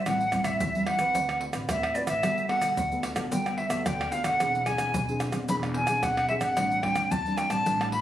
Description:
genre	samba and choro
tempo	110 BPM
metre	4/4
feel	straight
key	E minor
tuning	A4 = 440 Hz
part	concert flute	melody	0.0-8.0 s	D5 to B5	-27 LUFS	equal	plate reverb
part	nylon-string guitar	accompaniment	0.0-8.0 s	A2 to B4	-32 LUFS	equal	none
part	upright bass	bass	0.0-8.0 s	E1 to E2	-36 LUFS	right 1 dB	none
part	egg shaker, surdo, pandeiro and tamborim	percussion	0.1-8.0 s	none	-32 LUFS	right 1 dB	none
room	moderate studio reverb, RT60 0.6 s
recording	recorded on a phone in the room, studio ambience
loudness	-24 LUFS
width	side -12 dB against mid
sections	0.0-8.0 A section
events	none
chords	0.1 Am7; 1.1 D6; 2.2 Gmaj9; 4.4 E7b13; 6.6 Am7

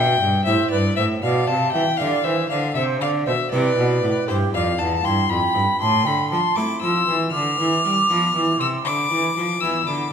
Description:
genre	classical, baroque-style sonata movement with continuo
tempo	79 BPM (dotted quarters)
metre	12/8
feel	straight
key	C major, A minor from 5.8 s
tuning	A4 = 440 Hz
part	rich violin	melody	0.0-10.1 s	C5 to F6	-22 LUFS	left 6 dB	none
part	baroque flute	second line	0.0-10.1 s	G4 to D6	-24 LUFS	right 5 dB	none
part	harpsichord	accompaniment	0.0-10.1 s	E2 to B4	-28 LUFS	right 1 dB	none
part	rich cello	bass	0.0-10.1 s	E2 to A3	-23 LUFS	right 1 dB	none
room	wet recital hall reverb, RT60 1.5 s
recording	minimal, uncompressed stereo recording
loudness	-18 LUFS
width	side -7 dB against mid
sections	0.0-10.1 A section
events	none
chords	0.0 C; 1.2 G/B; 2.8 C; 5.8 Am; 7.3 Bdim/D; 8.8 E7

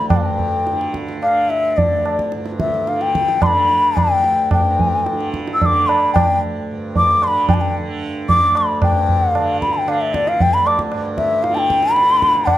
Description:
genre	indian classical, Hindustani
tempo	112 BPM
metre	4/4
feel	straight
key	D raga bageshri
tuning	A4 = 441 Hz
part	mellow bansuri	melody	0.0-12.6 s	D5 to E6	-16 LUFS	left 1 dB	none
part	tanpura	drone	0.0-12.6 s	D2 to D3	-25 LUFS	right 2 dB	none
part	tabla	percussion	0.1-12.6 s	none	-20 LUFS	right 1 dB	none
room	light reverb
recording	close, detailed microphones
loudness	-14 LUFS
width	side -13 dB against mid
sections	0.1-8.8 A section; 8.8-12.6 B section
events	speeding up 0.0-12.6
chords	none

